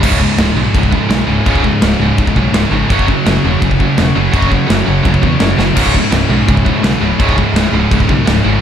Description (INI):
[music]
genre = heavy metal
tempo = 167 BPM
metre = 4/4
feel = straight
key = C# minor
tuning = A4 = 440 Hz
[part]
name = rich chamber string section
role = sustained chords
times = 0.0-8.6 s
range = C#3 to C#5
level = -25 LUFS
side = left 1 dB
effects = none
[part]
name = high-gain distorted guitar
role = riff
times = 0.0-8.6 s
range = C#2 to F#3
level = -18 LUFS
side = left 10 dB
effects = distortion
[part]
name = scooped high-gain guitar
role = riff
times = 0.0-8.6 s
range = C#2 to F#3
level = -16 LUFS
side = right 7 dB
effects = distortion
[part]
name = scooped high-gain guitar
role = riff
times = 0.0-8.6 s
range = C#2 to F#3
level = -18 LUFS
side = equal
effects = distortion
[part]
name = picked electric bass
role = bass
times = 0.0-8.6 s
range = C#1 to E2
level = -17 LUFS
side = equal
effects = none
[part]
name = big rock drum kit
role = drums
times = 0.0-8.4 s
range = china cymbal, crash cymbal, kick drum, snare drum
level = -16 LUFS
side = equal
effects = none
[sound]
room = light reverb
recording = dark, warm production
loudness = -10 LUFS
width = side -9 dB against mid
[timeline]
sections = 0.0-8.6 A section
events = drum fill 5.6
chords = 0.0 C#m; 2.9 F#m; 5.8 C#m